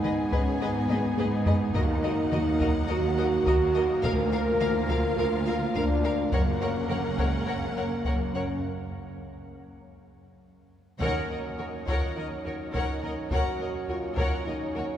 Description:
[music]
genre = cinematic, epic orchestral film score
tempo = 104 BPM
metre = 4/4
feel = straight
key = Eb minor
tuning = A4 = 440 Hz
[part]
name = rich studio violin section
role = melody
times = 0.0-14.9 s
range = Db5 to Gb5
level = -38 LUFS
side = left 4 dB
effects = none
[part]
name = warm symphonic violin section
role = second line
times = 0.0-14.8 s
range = Gb4 to Db5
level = -38 LUFS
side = left 2 dB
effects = none
[part]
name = clear trombone section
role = sustained chords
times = 0.0-15.0 s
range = Db3 to Db4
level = -36 LUFS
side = right 3 dB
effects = none
[part]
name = mellow French horn section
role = sustained chords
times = 0.0-15.0 s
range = Ab3 to Bb4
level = -30 LUFS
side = left 1 dB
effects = none
[part]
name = warm symphonic string section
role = sustained chords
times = 0.0-15.0 s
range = Bb3 to Ab5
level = -36 LUFS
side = equal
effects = none
[part]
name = dark symphonic double bass section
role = bass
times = 0.0-14.8 s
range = Gb1 to Eb2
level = -35 LUFS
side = right 2 dB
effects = none
[part]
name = rich symphonic cello section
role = bass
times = 0.0-14.8 s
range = D2 to Ab2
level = -34 LUFS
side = right 2 dB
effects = none
[part]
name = taiko ensemble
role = drums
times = 0.0-14.7 s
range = none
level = -31 LUFS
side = equal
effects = none
[part]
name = clear symphonic viola section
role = accompaniment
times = 0.1-14.8 s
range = Gb4 to Bb4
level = -37 LUFS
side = right 1 dB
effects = none
[sound]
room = wet cathedral reverb, RT60 4.7 s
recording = recorded in a church or concert hall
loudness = -24 LUFS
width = side -10 dB against mid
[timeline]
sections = 0.0-11.0 A section; 11.0-15.0 B section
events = drum fill 0.9-1.8, 10.1-11.0; break 8.6-11.0; band accent 11.0-11.6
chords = 0.0 Abm; 1.8 Ebm; 4.0 Bb/D; 6.3 Gb; 8.6 N.C.; 11.0 Ebm7

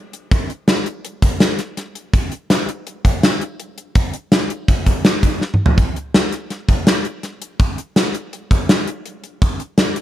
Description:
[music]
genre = progressive instrumental, progressive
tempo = 165 BPM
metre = 5/4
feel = straight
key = none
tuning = none
[part]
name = gated 80s drum kit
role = drums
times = 0.1-10.0 s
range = hi-hat, kick drum, snare drum, toms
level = -14 LUFS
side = equal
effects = none
[sound]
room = little or no reverb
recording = none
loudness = -16 LUFS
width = side -13 dB against mid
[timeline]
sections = 0.0-10.0 A section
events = drum fill 5.4-5.8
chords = none

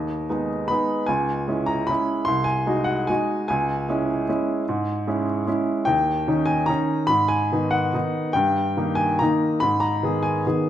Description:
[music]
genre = classical, piano waltz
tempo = 136-161 BPM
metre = 3/4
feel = rubato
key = G# minor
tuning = A4 = 440 Hz
[part]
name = clear baby grand piano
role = solo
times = 0.0-10.7 s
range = B#1 to B#5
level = -20 LUFS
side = equal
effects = none
[sound]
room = moderate recital hall reverb, RT60 1.7 s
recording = minimal, uncompressed stereo recording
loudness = -20 LUFS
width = side -11 dB against mid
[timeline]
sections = 0.0-10.7 A section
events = none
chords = 0.0 G#m; 1.1 C#m; 2.3 G#7/B#; 3.5 C#m; 5.9 D#7; 7.1 G#m; 8.4 D#/G; 9.6 G#m

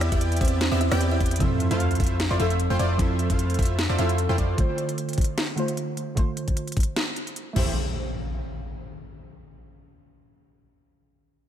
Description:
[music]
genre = future bass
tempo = 151 BPM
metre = 4/4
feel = swing 54% on 16ths, half-time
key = unclear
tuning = A4 = 445 Hz
[part]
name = supersaw stab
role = riff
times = 0.0-4.6, 7.6-7.7 s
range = A3 to G5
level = -29 LUFS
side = right 1 dB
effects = sidechain pumping, tape echo
[part]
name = warm 808-style bass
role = bass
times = 0.0-4.5, 7.6-7.7 s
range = A1 to F2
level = -24 LUFS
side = equal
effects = sidechain pumping
[part]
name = trap drum kit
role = drums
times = 0.0-7.6 s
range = crash cymbal, hi-hat, rim click, snare drum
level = -30 LUFS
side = equal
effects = none
[part]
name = buzzing kalimba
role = melody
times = 0.1-1.3 s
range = C4 to E5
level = -31 LUFS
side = right 4 dB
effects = sidechain pumping, analog delay
[part]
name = electronic kick drum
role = drums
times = 0.1-7.6 s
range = none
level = -24 LUFS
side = equal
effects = none
[part]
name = soft round pluck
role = accompaniment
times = 1.4-7.7 s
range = D3 to C5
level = -30 LUFS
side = right 2 dB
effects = analog chorus, cassette tape, sidechain pumping, tape echo
[part]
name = sub drop and impact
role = sound effects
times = 1.4-3.0, 7.6-9.2 s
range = none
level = -32 LUFS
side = left 1 dB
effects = none
[sound]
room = moderate plate reverb, RT60 2.0 s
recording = dreamy mix soaked in reverb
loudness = -22 LUFS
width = side -10 dB against mid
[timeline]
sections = 0.0-1.4 A section; 1.4-7.8 B section; 7.8-9.3 C section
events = drop 0.0-1.4; drum fill 1.2; impact 1.4-3.0; filter sweep on 808-style bass 1.4-7.8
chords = 0.0 Em7; 1.4 Fmaj7; 4.6 Dm7; 7.6 Am7; 7.8 N.C.

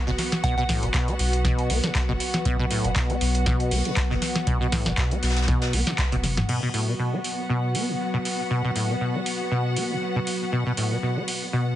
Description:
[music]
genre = acid house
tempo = 119 BPM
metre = 4/4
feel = swing 55% on 16ths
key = unclear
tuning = A4 = 440 Hz
[part]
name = dark analog pad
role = sustained chords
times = 0.0-11.8 s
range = F#3 to F#5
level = -31 LUFS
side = equal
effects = chorus, phaser, sidechain pumping
[part]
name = clear studio string section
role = texture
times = 0.0-11.8 s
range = B3 to F#5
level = -32 LUFS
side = left 1 dB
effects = sidechain pumping
[part]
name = acid bass, saw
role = riff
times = 0.1-11.8 s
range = A2 to B3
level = -27 LUFS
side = equal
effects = tube saturation, ensemble chorus, ping-pong delay
[part]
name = warm sub bass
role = bass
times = 0.1-6.4 s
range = F#1 to B1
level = -26 LUFS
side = equal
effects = tube saturation, sidechain pumping
[part]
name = soft brush drum kit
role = drums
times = 0.1-11.7 s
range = hi-hat, snare drum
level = -37 LUFS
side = left 2 dB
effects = none
[part]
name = booming analog drum machine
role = drums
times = 0.2-11.4 s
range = crash cymbal, handclaps, hi-hat, snare drum, toms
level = -28 LUFS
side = equal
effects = none
[part]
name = soft synth bell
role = melody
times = 0.4-0.6 s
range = F#5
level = -30 LUFS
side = right 3 dB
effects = chorus, phaser, ping-pong delay
[part]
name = electronic kick drum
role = drums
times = 0.4-6.1 s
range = none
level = -26 LUFS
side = equal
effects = none
[sound]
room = moderate studio reverb, RT60 0.5 s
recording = heavily compressed radio sound, nothing above 10.6 kHz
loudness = -22 LUFS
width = side -12 dB against mid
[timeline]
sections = 0.0-6.5 A section; 6.5-11.8 B section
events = filter sweep on acid bass 0.0-6.5; band accent 6.0; drum fill 6.2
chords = 0.0 B5

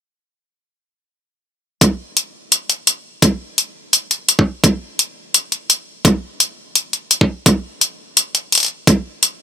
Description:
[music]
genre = half-time drum and bass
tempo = 170 BPM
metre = 4/4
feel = swing 59% on 16ths, half-time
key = none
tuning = none
[part]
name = electronic hi-hat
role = drums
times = 1.8-9.3 s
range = none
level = -12 LUFS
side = left 2 dB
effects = none
[part]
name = electronic kick drum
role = drums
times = 1.8-9.0 s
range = none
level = -12 LUFS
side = right 1 dB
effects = high-pass filter on kick
[sound]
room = little or no reverb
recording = none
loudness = -14 LUFS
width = side -8 dB against mid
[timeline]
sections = 1.8-9.4 A section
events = none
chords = none

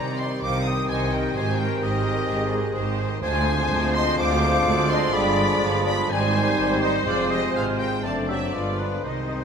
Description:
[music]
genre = classical, dramatic, fast romantic movement for symphony orchestra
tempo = 126 BPM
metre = 4/4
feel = rubato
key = unclear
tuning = A4 = 440 Hz
[part]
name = rich studio violin section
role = melody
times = 0.0-9.4 s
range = B4 to Eb6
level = -31 LUFS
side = left 2 dB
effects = none
[part]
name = clear oboe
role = second line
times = 0.0-9.4 s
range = B4 to Eb6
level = -30 LUFS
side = equal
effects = none
[part]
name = clear symphonic violin section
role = second line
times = 0.0-9.4 s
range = B3 to Eb5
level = -35 LUFS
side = left 3 dB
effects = none
[part]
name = flute section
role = second line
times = 0.0-9.4 s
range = D4 to G5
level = -31 LUFS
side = left 5 dB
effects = none
[part]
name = mellow clarinet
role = second line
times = 0.0-9.4 s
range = Ab4 to C5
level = -33 LUFS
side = left 1 dB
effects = none
[part]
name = mellow bassoon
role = accompaniment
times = 0.0-9.4 s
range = Eb3 to A3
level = -32 LUFS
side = right 1 dB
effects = none
[part]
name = rich symphonic viola section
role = accompaniment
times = 0.0-9.4 s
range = Ab4 to Eb5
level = -30 LUFS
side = right 2 dB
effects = none
[part]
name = bright trombone section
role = sustained chords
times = 0.0-9.4 s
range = C3 to A3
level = -31 LUFS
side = right 3 dB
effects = none
[part]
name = warm French horn section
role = sustained chords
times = 0.0-9.4 s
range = B3 to G4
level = -30 LUFS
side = left 3 dB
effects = none
[part]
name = rich symphonic cello section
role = bass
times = 0.0-9.4 s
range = D2 to C3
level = -29 LUFS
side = right 2 dB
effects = none
[part]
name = rich symphonic double bass section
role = bass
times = 0.0-9.4 s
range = F1 to D2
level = -29 LUFS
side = right 2 dB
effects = none
[sound]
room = moderate scoring stage reverb, RT60 2.0 s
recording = none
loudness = -20 LUFS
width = side -6 dB against mid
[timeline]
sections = 0.0-9.4 A section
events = none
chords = 0.0 Cm; 1.4 Abmaj7; 3.2 Dm7b5; 5.1 G7b9; 6.1 Abmaj7; 7.1 Fm; 8.0 D7/F#; 8.5 G7b9

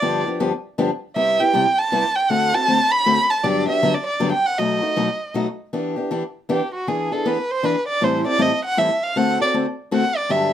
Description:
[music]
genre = jazz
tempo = 158 BPM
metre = 3/4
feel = swing 63% on 8ths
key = E minor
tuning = A4 = 440 Hz
[part]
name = dark violin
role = melody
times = 0.0-10.5 s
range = F#4 to B5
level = -19 LUFS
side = right 2 dB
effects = none
[part]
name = picked steel-string acoustic guitar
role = accompaniment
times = 0.0-10.5 s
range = G2 to A4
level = -21 LUFS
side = left 2 dB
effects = none
[sound]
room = light reverb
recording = none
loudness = -18 LUFS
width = side -10 dB against mid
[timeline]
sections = 0.0-5.7 A section; 5.7-10.5 B section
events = violin solo 5.7-10.5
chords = 0.0 G7; 1.2 Cmaj7; 2.3 D7; 3.4 Gmaj7; 4.6 B7; 5.7 Em7; 6.9 E7; 8.0 Am7; 9.2 D7

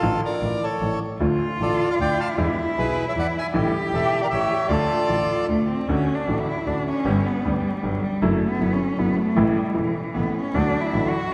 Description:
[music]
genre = tango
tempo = 154 BPM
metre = 3/4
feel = rubato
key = D minor, D major from 5.9 s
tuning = A4 = 442 Hz
[part]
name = bandoneon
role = melody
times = 0.0-5.5 s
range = E4 to A5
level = -28 LUFS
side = equal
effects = none
[part]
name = clear upright piano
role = accompaniment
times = 0.0-11.1 s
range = E1 to G4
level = -27 LUFS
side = equal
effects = none
[part]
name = dark double bass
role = bass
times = 0.0-11.1 s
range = E1 to E2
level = -31 LUFS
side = equal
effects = none
[part]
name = warm cello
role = second line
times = 1.2-11.3 s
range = E3 to G4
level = -27 LUFS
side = equal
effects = none
[sound]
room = wet concert hall reverb, RT60 2.1 s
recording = recorded in a church or concert hall, vinyl crackle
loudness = -23 LUFS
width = mono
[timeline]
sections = 0.0-5.9 A section; 5.9-11.3 B section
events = cello solo 5.9-11.3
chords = 0.0 Dm/A; 0.8 A; 1.2 Dm; 2.4 E7; 3.5 A7sus4; 4.3 A7; 4.7 Dm; 5.9 Dmaj7; 7.1 G; 8.2 Dadd9/F#; 9.4 A; 10.6 D

